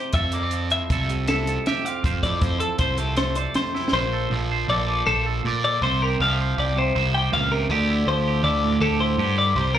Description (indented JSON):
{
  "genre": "math rock and midwest emo",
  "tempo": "159 BPM",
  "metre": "5/4",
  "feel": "straight",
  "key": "F major",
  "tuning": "A4 = 440 Hz",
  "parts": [
    { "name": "twangy electric guitar", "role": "accompaniment", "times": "0.0-9.8 s", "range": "F2 to D5", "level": "-27 LUFS", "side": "right 10 dB", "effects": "lush chorus, slapback echo" },
    { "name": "twelve-string electric guitar", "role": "arpeggios", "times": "0.0-9.8 s", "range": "A4 to G5", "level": "-24 LUFS", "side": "left 4 dB", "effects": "slapback echo" },
    { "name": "fuzz picked electric bass", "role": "bass", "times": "0.1-9.8 s", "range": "Bb1 to Bb2", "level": "-24 LUFS", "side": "equal", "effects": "overdrive" },
    { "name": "compact cocktail drum kit", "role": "drums", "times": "0.1-4.0 s", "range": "hi-hat, kick drum, snare drum", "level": "-26 LUFS", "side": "equal", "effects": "none" }
  ],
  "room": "little or no reverb",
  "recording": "live gig heard through the venue's PA, club reverb",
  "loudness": "-20 LUFS",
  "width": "side -10 dB against mid",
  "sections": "0.0-3.9 A section; 3.9-9.8 B section",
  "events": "drum fill 3.7",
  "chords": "0.1 Fmaj7; 3.9 Bbmaj9; 5.8 C7sus4; 7.7 Dm11"
}